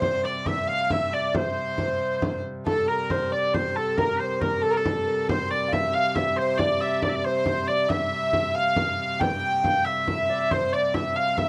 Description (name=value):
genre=medieval dance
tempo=92 BPM (dotted quarters)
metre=6/8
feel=straight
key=C mixolydian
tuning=A4 = 439 Hz
part: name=clear hurdy-gurdy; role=melody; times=0.0-11.5 s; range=A4 to G5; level=-27 LUFS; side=equal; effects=none
part: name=bright shawm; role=second line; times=0.0-11.5 s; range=A4 to G5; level=-34 LUFS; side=equal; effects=none
part: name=concert harp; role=second line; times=0.0-11.5 s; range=A4 to G5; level=-34 LUFS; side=equal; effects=none
part: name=pipe organ, foundations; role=drone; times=0.0-11.5 s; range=C3 to G3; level=-36 LUFS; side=equal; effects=none
part: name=frame drum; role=percussion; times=0.0-11.5 s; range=none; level=-32 LUFS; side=equal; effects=none
room=light reverb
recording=dry, close 1970s-style studio recording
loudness=-25 LUFS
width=mono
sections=0.0-2.7 A section; 2.7-11.5 A section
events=none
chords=none